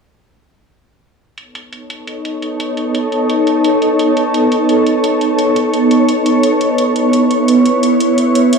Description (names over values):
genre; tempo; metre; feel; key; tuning
liquid drum and bass; 172 BPM; 4/4; straight; unclear; A4 = 440 Hz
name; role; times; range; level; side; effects
glassy FM pad; sustained chords; 2.1-8.6 s; B3 to C#5; -11 LUFS; right 1 dB; ensemble chorus, built-in reverb
electronic hi-hat; drums; 1.4-8.6 s; none; -26 LUFS; right 1 dB; low-pass filter on hats, low-pass filter on room
room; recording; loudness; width
moderate digital room reverb, RT60 1.0 s; studio reverb; -11 LUFS; side -5 dB against mid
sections
1.4-8.6 A section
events
none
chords
1.4 B9; 6.8 C#m7